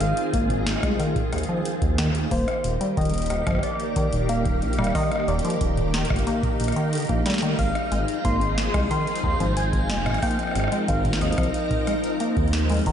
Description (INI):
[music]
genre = IDM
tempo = 91 BPM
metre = 4/4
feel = straight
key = unclear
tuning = A4 = 437 Hz
[part]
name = soft struck synth lead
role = melody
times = 0.0-12.9 s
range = Bb4 to C6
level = -30 LUFS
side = equal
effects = chorus, cassette tape, slapback echo, ping-pong delay
[part]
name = soft string machine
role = sustained chords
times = 0.0-12.9 s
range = Eb3 to Bb4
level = -29 LUFS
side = equal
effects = phaser, ensemble chorus, sidechain pumping
[part]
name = deep acid bass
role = arpeggios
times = 0.0-12.9 s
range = Eb2 to Bb3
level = -27 LUFS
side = left 1 dB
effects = ping-pong delay
[part]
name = dark detuned saw bass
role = bass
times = 0.0-12.9 s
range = Eb1 to Eb2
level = -26 LUFS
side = equal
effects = none
[part]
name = booming analog drum machine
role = drums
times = 0.0-12.9 s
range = hi-hat, rim click, snare drum, toms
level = -30 LUFS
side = equal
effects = none
[part]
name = backwards swelling texture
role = texture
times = 0.0-12.9 s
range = Eb4 to F5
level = -35 LUFS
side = equal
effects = built-in reverb
[part]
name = electronic kick drum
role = drums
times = 0.3-12.9 s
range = none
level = -28 LUFS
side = equal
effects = none
[sound]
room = moderate lush hall reverb, RT60 2.5 s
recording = big arena sound, nothing above 10.4 kHz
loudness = -21 LUFS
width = side -9 dB against mid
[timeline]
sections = 0.0-12.9 A section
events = none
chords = 0.0 Ab6; 2.3 Ebmaj7; 7.6 Ab6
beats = 0.34 0.99 1.65 | 2.31 2.97 3.63 4.29 | 4.95 5.61 6.27 6.93 | 7.59 8.25 8.91 9.57 | 10.23 10.88 11.54 12.20 | 12.86